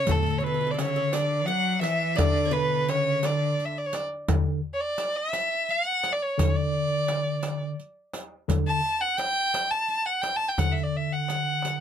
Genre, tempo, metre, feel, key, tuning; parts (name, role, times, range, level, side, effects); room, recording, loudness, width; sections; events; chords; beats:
Arabic maqam ensemble; 57 BPM (dotted quarters); 6/8; straight; D maqam ajam; A4 = 440 Hz
warm violin; melody; 0.0-11.8 s; A4 to A5; -26 LUFS; equal
clear cello; second line; 0.0-3.7 s; A2 to F#3; -30 LUFS; left 2 dB
qanun; second line; 0.0-4.2 s; A4 to F#5; -36 LUFS; right 1 dB
tine electric piano; bass; 0.1-11.8 s; D3; -28 LUFS; left 1 dB; medium stereo tremolo
darbuka; percussion; 0.1-11.8 s; -29 LUFS; left 2 dB
riq; percussion; 0.1-11.8 s; -34 LUFS; right 5 dB
light reverb; -23 LUFS; side -9 dB against mid
0.0-4.3 A section; 4.3-11.8 B section
| 0.09 1.14 | 2.19 3.24 | 4.29 5.34 | 6.39 7.44 | 8.49 9.54 | 10.59 11.63